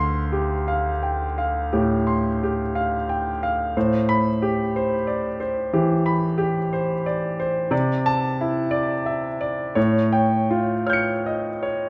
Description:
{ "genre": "classical, impressionist solo piano", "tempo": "49-61 BPM", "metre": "4/4", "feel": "rubato", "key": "D minor", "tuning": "A4 = 441 Hz", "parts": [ { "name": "clear concert grand piano", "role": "solo", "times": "0.0-11.9 s", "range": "D2 to C#7", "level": "-23 LUFS", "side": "equal", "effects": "none" } ], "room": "moderate recital hall reverb, RT60 1.6 s", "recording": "nothing above 10.3 kHz", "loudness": "-23 LUFS", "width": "mono", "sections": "0.0-11.9 A section", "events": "none", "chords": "0.0 Dm7; 3.8 Am9; 7.7 C69; 9.8 Aaug7", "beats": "0.68 1.74 2.75 | 3.75 4.74 5.72 6.71 | 7.72 8.72 9.76 10.88" }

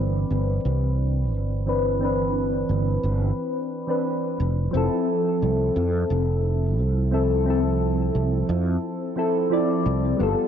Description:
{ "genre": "sunset chillout", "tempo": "88 BPM", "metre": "4/4", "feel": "straight", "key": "F lydian", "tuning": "A4 = 440 Hz", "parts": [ { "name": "soft electric-piano-like synth keys", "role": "accompaniment", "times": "0.0-10.5 s", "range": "E3 to D5", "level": "-23 LUFS", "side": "left 1 dB", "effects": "chorus, phaser, auto-pan, low-pass filter, ping-pong delay" }, { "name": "fretless electric bass", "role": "bass", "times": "0.0-10.3 s", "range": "F1 to F2", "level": "-23 LUFS", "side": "right 1 dB", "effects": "ensemble chorus" } ], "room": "wet plate reverb, RT60 3.1 s", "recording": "dreamy mix soaked in reverb", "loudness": "-21 LUFS", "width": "side -8 dB against mid", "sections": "0.0-10.5 A section", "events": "filter sweep on synth keys 0.0-10.5", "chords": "0.0 Cmaj9; 4.4 Fmaj7", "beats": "0.65 1.33 | 2.01 2.69 3.38 4.06 | 4.74 5.42 6.10 6.79 | 7.47 8.15 8.83 9.51 | 10.20" }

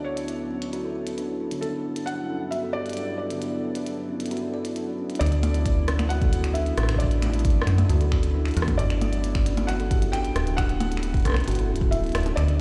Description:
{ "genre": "IDM", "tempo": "134 BPM", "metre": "4/4", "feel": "straight", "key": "unclear", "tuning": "A4 = 440 Hz", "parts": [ { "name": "felt-muted upright piano", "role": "melody", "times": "0.0-12.6 s", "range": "A4 to G5", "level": "-36 LUFS", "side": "equal", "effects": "delay" }, { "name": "warbly tape-like pad", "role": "sustained chords", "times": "0.0-12.6 s", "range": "D2 to A4", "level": "-36 LUFS", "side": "equal", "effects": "chorus, built-in reverb" }, { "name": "glitchy drum kit", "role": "drums", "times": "0.2-12.6 s", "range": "finger snaps, hi-hat, percussion blips, rim click", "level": "-35 LUFS", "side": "equal", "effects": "none" }, { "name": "kalimba", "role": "arpeggios", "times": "0.5-12.5 s", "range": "D3 to D5", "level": "-34 LUFS", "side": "equal", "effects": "vintage 12-bit sampler grit, digital delay" }, { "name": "metallic FM bass", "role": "bass", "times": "5.2-12.6 s", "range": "D1 to F#2", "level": "-26 LUFS", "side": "equal", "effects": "tube saturation" }, { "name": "electronic kick drum", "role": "drums", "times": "5.7-11.9 s", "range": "none", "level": "-27 LUFS", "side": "equal", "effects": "none" } ], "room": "light reverb, digital ambience", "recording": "played on a big sound system in a bare room, large studio reverb", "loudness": "-25 LUFS", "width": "mono", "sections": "0.0-5.2 A section; 5.2-12.6 B section", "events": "filter sweep on ambient pad 0.0-5.2", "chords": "0.0 Dmaj9; 1.6 Gmaj9; 5.2 Dadd9; 8.8 Gmaj9", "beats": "0.28 0.73 1.18 | 1.63 2.07 2.52 2.97 | 3.42 3.87 4.31 4.76 | 5.21 5.66 6.10 6.55 | 7.00 7.45 7.89 8.34 | 8.79 9.24 9.69 10.13 | 10.58 11.03 11.48 11.93 | 12.37" }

